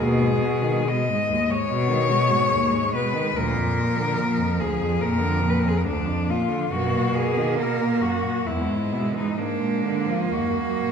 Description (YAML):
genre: classical, lyrical piece for cello ensemble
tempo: 59-75 BPM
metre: 4/4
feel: rubato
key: unclear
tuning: A4 = 441 Hz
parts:
  - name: clear cello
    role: melody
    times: 0.0-10.9 s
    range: D4 to Eb5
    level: -25 LUFS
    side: left 4 dB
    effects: none
  - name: bright cello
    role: second line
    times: 0.0-10.9 s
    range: F3 to A#3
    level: -29 LUFS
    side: right 8 dB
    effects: none
  - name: clear cello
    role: accompaniment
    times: 0.0-10.9 s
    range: D2 to F3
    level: -25 LUFS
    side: left 1 dB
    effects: none
  - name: rich cello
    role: bass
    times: 0.0-10.9 s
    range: F2 to Cb3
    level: -27 LUFS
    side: right 1 dB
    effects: none
room: wet recital hall reverb, RT60 1.4 s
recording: recorded in a church or concert hall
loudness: -20 LUFS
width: side -6 dB against mid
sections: 0.0-10.9 A section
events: none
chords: 0.0 Abm/Eb; 3.4 Bb/D; 6.7 Bmaj7/F#; 8.5 E; 9.4 Bb7/Ab; 10.3 Ebm